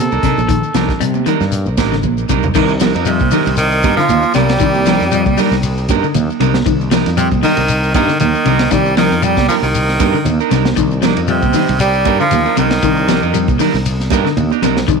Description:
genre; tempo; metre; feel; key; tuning
afrobeat; 117 BPM; 4/4; swing 55% on 16ths; C dorian; A4 = 437 Hz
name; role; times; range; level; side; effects
bright trumpet; melody; 0.0-1.0 s; A4; -20 LUFS; left 1 dB; none
semi-hollow electric guitar; arpeggios; 0.0-15.0 s; C3 to G3; -18 LUFS; left 13 dB; warbly pitch drift
fretless electric bass; bass; 0.0-15.0 s; A1 to C3; -18 LUFS; left 1 dB; none
clean electric guitar; stabs; 0.1-14.8 s; G3 to Bb4; -20 LUFS; right 11 dB; tape echo
shekere; percussion; 0.1-15.0 s; none; -24 LUFS; left 9 dB; none
crunchy breakbeat drum kit; drums; 0.2-15.0 s; crash cymbal, hi-hat, kick drum, ride cymbal, snare drum, toms; -21 LUFS; left 1 dB; none
congas; percussion; 0.2-14.8 s; none; -21 LUFS; right 13 dB; none
edgy tenor saxophone; melody; 3.1-13.6 s; C3 to G3; -17 LUFS; equal; tape echo
brilliant trombone; second line; 3.1-13.6 s; C4 to G4; -21 LUFS; right 10 dB; none
room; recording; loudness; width
light reverb; 1960s-style stereo with parts hard left and right; -11 LUFS; side -5 dB against mid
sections
0.0-2.6 A section; 2.6-15.0 B section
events
trumpet solo 0.0-2.6; drum fill 2.0-2.6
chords
0.0 Cm9

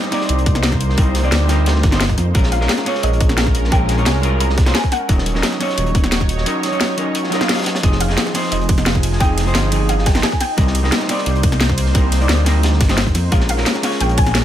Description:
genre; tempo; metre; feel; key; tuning
liquid drum and bass; 175 BPM; 4/4; straight; unclear; A4 = 440 Hz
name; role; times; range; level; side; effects
soft round pluck; melody; 0.0-0.4, 2.5-5.9, 8.0-14.4 s; Eb5 to Bb5; -25 LUFS; equal; ensemble chorus, ping-pong delay
vintage hollow-body jazz guitar; accompaniment; 0.0-14.4 s; F3 to D5; -22 LUFS; equal; ping-pong delay
lush unison pad; sustained chords; 0.0-14.4 s; F3 to Db5; -26 LUFS; right 1 dB; chorus, sidechain pumping
crunchy breakbeat drum kit; drums; 0.0-14.4 s; hi-hat, snare drum; -26 LUFS; left 1 dB; high-pass filter on hats, small room ambience, high-pass filter on snare, high-pass filter on room
drum and bass drum kit; drums; 0.0-14.4 s; hi-hat, ride cymbal, snare drum; -21 LUFS; left 1 dB; overdrive, small room ambience
dark detuned saw bass; bass; 0.3-14.4 s; Eb1 to F2; -17 LUFS; equal; tube saturation
electronic kick drum; drums; 0.5-14.2 s; none; -16 LUFS; equal; overdrive, small room ambience
swell; sound effects; 7.3-7.8 s; none; -25 LUFS; right 2 dB; none
room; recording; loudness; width
little or no reverb; none; -14 LUFS; side -11 dB against mid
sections
0.0-14.4 A section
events
swell 7.3-7.8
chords
0.0 Cm7; 2.3 Bbm7; 5.1 Ebm7; 7.8 Fm7; 10.4 Cm7; 13.3 Bbm7

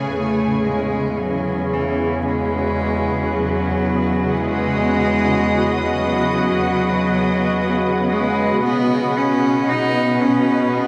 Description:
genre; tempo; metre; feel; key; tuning
ambient; 56 BPM; 4/4; straight; E major; A4 = 440 Hz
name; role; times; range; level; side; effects
shimmering ambient pad; sustained chords; 0.0-10.9 s; B2 to A5; -23 LUFS; equal; chorus, built-in reverb
warm chamber cello section; bass; 0.0-10.9 s; E2 to B2; -27 LUFS; equal; none
rich cello; melody; 0.1-10.9 s; E3 to D#4; -23 LUFS; equal; diffuse ambient delay
glass harmonica; texture; 0.1-10.9 s; B5; -32 LUFS; equal; none
room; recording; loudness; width
wet huge ambient reverb, RT60 7.7 s; none; -19 LUFS; mono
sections
0.1-10.9 A section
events
fade-in on glass harmonica 0.1-10.9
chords
0.1 Emaj7; 8.6 Bsus2

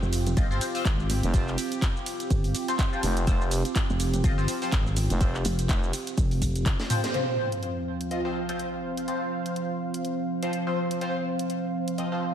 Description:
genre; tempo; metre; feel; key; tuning
bass house; 124 BPM; 4/4; swing 57% on 16ths; unclear; A4 = 441 Hz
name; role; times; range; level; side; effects
sweeping resonant pad; sustained chords; 0.0-12.3 s; F3 to F5; -31 LUFS; right 2 dB; chorus, sidechain pumping
pulsing pluck wobble bass; bass; 0.0-6.6 s; F1 to Ab1; -26 LUFS; equal; chorus, tube saturation, sidechain pumping
garage drum kit; drums; 0.0-12.1 s; handclaps, hi-hat, ride cymbal, shaker, snare drum, toms; -33 LUFS; right 1 dB; studio reverb
band-passed chord stab; stabs; 0.4-12.2 s; F3 to Eb5; -32 LUFS; left 2 dB; phaser, lush chorus, sidechain pumping, ping-pong delay
electronic kick drum; drums; 0.4-6.8 s; none; -25 LUFS; equal; studio reverb
growling FM bass; bass; 1.2-5.9 s; F1; -27 LUFS; equal; overdrive, sidechain pumping
sub drop; sound effects; 7.1-9.1 s; none; -36 LUFS; equal; none
room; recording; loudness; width
moderate lush hall reverb, RT60 1.8 s, digital ambience; dreamy mix soaked in reverb; -24 LUFS; side -9 dB against mid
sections
0.0-7.1 A section; 7.1-12.3 B section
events
drop 0.0-7.1; drum fill 6.4-7.1; band accent 7.0; impact 7.1-9.1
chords
0.0 F5

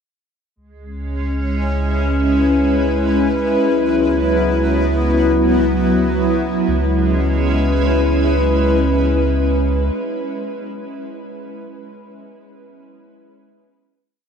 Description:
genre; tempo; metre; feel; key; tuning
ambient; free time; none; none; C# minor; A4 = 440 Hz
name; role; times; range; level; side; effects
glassy FM pad; sustained chords; 1.1-10.4 s; F#3 to B4; -16 LUFS; equal; ensemble chorus, built-in reverb, tremolo
warm sub bass; bass; 0.6-9.9 s; C#2; -20 LUFS; equal; none
room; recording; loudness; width
wet huge ambient reverb, RT60 7.4 s; worn, warbling old tape, cassette tape, warbly pitch drift; -14 LUFS; side -7 dB against mid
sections
0.6-6.7 A section; 6.7-9.7 final chord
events
none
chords
0.6 C#m7; 3.6 Esus2/C#; 6.7 C#m7

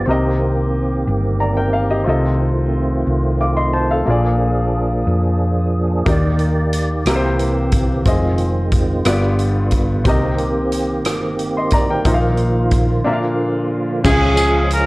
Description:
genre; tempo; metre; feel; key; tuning
slow gospel; 60 BPM (dotted quarters); 6/8; straight; unclear; A4 = 440 Hz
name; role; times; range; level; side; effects
clear baby grand piano; accompaniment; 0.0-14.9 s; G2 to D6; -20 LUFS; left 1 dB; none
tonewheel organ; sustained chords; 0.0-14.9 s; D3 to D5; -21 LUFS; right 2 dB; slow rotary speaker, chorus vibrato
hollow-body short-scale fingered electric bass; bass; 0.0-14.9 s; F1 to F2; -19 LUFS; equal; transformer saturation
swinging big-band drum kit; drums; 6.1-14.9 s; crash cymbal, hi-hat, kick drum, rim click; -20 LUFS; equal; none
clear horn section; melody; 14.1-14.9 s; Db4 to Bb4; -16 LUFS; equal; none
tambourine; percussion; 14.1-14.7 s; none; -27 LUFS; left 2 dB; none
room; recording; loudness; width
little or no reverb; worn, warbling old tape, cassette tape, warbly pitch drift; -15 LUFS; side -21 dB against mid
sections
0.0-14.0 A section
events
break 13.0-14.0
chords
0.1 Cm7; 2.1 F7/C; 4.1 Bb7; 6.1 Ebmaj7; 7.1 C7; 8.1 Fm7; 9.1 G7; 10.1 Cm7; 12.1 Bbsus4; 13.0 Bb; 14.0 Db

